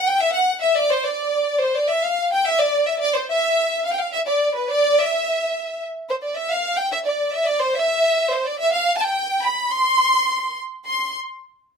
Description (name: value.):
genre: mexican folk.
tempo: 107 BPM.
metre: 2/4.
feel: straight.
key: C major.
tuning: A4 = 440 Hz.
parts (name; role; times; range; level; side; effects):
rich studio violin section; solo; 0.0-11.1 s; B4 to C6; -18 LUFS; equal; none.
room: moderate studio reverb, RT60 0.6 s.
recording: close, detailed microphones.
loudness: -18 LUFS.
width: side -6 dB against mid.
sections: 0.0-6.4 A section; 6.4-10.9 B section.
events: none.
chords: none.